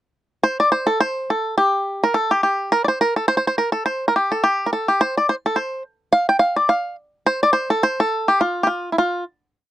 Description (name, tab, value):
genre	celtic folk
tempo	211 BPM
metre	4/4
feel	swing 57% on 8ths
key	unclear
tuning	A4 = 442 Hz
part	bluegrass banjo	solo	0.4-9.2 s	E4 to G5	-17 LUFS	equal	none
room	little or no reverb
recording	dry, close 1970s-style studio recording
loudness	-17 LUFS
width	side -13 dB against mid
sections	0.4-9.5 A section; 9.5-9.7 final hit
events	none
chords	none